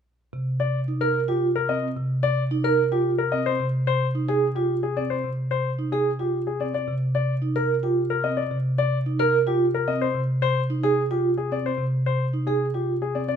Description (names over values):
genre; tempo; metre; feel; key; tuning
classical, minimalist pattern music; 110 BPM; 3/4; straight; unclear; A4 = 439 Hz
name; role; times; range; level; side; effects
marimba with soft mallets; accompaniment; 0.3-12.0 s; C3; -26 LUFS; equal; none
warm grand piano; melody; 0.6-13.4 s; G4 to Eb5; -26 LUFS; left 7 dB; none
vibraphone with soft mallets; arpeggios; 0.9-13.3 s; C4 to Bb4; -24 LUFS; right 6 dB; none
room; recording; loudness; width
light reverb; none; -21 LUFS; side -8 dB against mid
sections
0.2-13.4 A section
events
none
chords
0.2 Ebsus2; 3.5 Cm; 6.7 Ebmaj7sus2; 10.0 Cm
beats
| 0.20 0.74 1.29 | 1.83 2.38 2.92 | 3.47 4.01 4.56 | 5.11 5.65 6.20 | 6.74 7.29 7.83 | 8.38 8.92 9.47 | 10.01 10.56 11.11 | 11.65 12.20 12.74 | 13.29